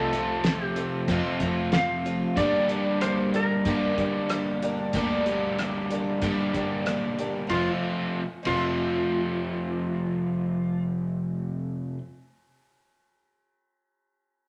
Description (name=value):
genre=folk rock and heartland rock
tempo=94 BPM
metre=4/4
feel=straight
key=F major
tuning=A4 = 442 Hz
part: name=electric slide guitar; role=melody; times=0.0-10.8 s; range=F4 to F5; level=-32 LUFS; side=equal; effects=none
part: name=picked twelve-string acoustic guitar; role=accompaniment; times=0.0-12.1 s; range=F2 to G4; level=-33 LUFS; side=equal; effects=none
part: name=crunchy overdriven guitar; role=riff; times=0.0-12.0 s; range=F2 to G4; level=-30 LUFS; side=equal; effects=none
part: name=fingered electric bass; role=bass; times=0.0-11.5 s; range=F1 to G2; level=-36 LUFS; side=equal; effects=none
part: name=damped 70s drum kit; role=drums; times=0.1-8.6 s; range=hi-hat, kick drum, ride cymbal, rim click, snare drum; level=-33 LUFS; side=equal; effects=none
room=wet large studio reverb, RT60 0.9 s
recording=none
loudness=-27 LUFS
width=mono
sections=0.0-7.5 A section; 7.5-10.1 B section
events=none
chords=0.0 F; 2.4 Gm; 7.5 F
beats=0.43 1.08 1.72 | 2.36 3.00 3.65 4.29 | 4.93 5.57 6.21 6.85 | 7.50 8.14 8.78 9.42